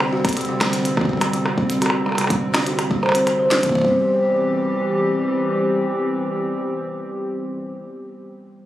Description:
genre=IDM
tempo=124 BPM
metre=4/4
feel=straight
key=C major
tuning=A4 = 441 Hz
part: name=hollow soft pad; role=sustained chords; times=0.0-7.8 s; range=D3 to G4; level=-24 LUFS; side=left 1 dB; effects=chorus
part: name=kalimba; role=arpeggios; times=0.0-4.0 s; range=C3 to C5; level=-22 LUFS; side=equal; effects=low-pass filter, dub echo
part: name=glitchy drum kit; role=drums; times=0.0-3.7 s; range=hi-hat, percussion blips, snare drum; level=-22 LUFS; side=equal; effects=ping-pong delay
part: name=electronic kick drum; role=drums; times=0.2-3.9 s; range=none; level=-22 LUFS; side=equal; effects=none
room=moderate huge ambient reverb, RT60 4.4 s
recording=recorded on a phone in the room, studio reverb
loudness=-18 LUFS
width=side -13 dB against mid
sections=0.0-3.8 A section; 3.8-7.6 B section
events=filter sweep on kalimba 0.0-3.8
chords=0.0 Csus2; 3.8 C

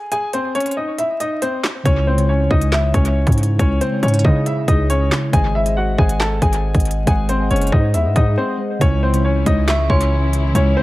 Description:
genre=hip hop, drill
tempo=138 BPM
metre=4/4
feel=half-time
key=C# harmonic minor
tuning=A4 = 439 Hz
part: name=clear upright piano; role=melody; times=0.0-10.8 s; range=B#3 to A5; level=-21 LUFS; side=left 1 dB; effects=low-pass filter, analog delay
part: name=drill drum kit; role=drums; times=0.1-10.7 s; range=handclaps, hi-hat, kick drum, snare drum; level=-18 LUFS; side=equal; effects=none
part: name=muted felt-like synth keys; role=accompaniment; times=1.8-10.8 s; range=C#3 to F#5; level=-21 LUFS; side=equal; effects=chorus, low-pass filter, analog delay
part: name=distorted 808-style bass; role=bass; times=1.9-10.8 s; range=F#1 to C#3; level=-18 LUFS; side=equal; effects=distortion
part: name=muted studio string section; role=sustained chords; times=8.8-10.8 s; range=C#3 to E4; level=-28 LUFS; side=left 1 dB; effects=none
part: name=dark detuned synth bell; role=second line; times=9.7-10.5 s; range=B#5 to C#6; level=-28 LUFS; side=right 1 dB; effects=chorus, tremolo, analog delay
room=little or no reverb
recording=echo-heavy mix, vinyl crackle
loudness=-14 LUFS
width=side -18 dB against mid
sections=0.0-8.8 A section; 8.8-10.8 B section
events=break 0.0-1.9, 8.4-8.8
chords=0.0 G#; 1.9 C#m; 5.3 G#; 8.8 C#m

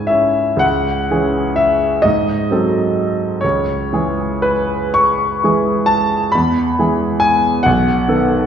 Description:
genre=classical, romantic nocturne for solo piano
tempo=36-48 BPM (dotted quarters)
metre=12/8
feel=rubato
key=C# minor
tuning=A4 = 440 Hz
part: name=clear concert grand piano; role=solo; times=0.0-8.5 s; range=B1 to C#6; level=-13 LUFS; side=equal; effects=none
room=wet scoring stage reverb, RT60 1.7 s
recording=heard from further back in the room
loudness=-13 LUFS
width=side -8 dB against mid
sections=0.6-8.5 A section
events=none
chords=0.0 C#m; 2.0 G#7b9; 3.4 C#m; 6.3 E; 7.7 B7

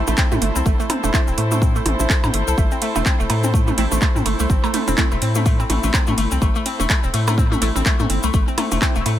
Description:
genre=minimal techno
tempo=125 BPM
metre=4/4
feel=swing 58% on 16ths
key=A minor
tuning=A4 = 441 Hz
part: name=hollow square pluck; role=riff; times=0.0-9.1 s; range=A3 to A4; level=-24 LUFS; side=left 1 dB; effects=chorus, phaser, vintage 12-bit sampler grit, sidechain pumping, tape echo
part: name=round analog bass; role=bass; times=0.0-9.2 s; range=E1 to A2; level=-21 LUFS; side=equal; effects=sidechain pumping
part: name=dark chamber string section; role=texture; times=0.0-9.2 s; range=E4 to B5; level=-27 LUFS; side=left 1 dB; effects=sidechain pumping
part: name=cabasa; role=percussion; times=0.1-9.0 s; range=none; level=-30 LUFS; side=left 4 dB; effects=none
part: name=electronic percussion blips and toms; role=percussion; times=0.1-9.2 s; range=none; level=-26 LUFS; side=right 2 dB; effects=dub echo
part: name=booming analog drum machine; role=drums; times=0.2-9.2 s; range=handclaps, hi-hat, ride cymbal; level=-24 LUFS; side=right 1 dB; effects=overdrive
part: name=electronic kick drum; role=drums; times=0.2-8.9 s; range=none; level=-18 LUFS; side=equal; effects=none
part: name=filtered dub chord stab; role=stabs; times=1.1-8.9 s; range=A3 to E4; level=-30 LUFS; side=right 2 dB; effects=phaser, analog chorus, dub echo
room=digital ambience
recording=echo-heavy mix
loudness=-16 LUFS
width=side -12 dB against mid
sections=0.0-9.2 A section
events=none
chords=0.0 Am

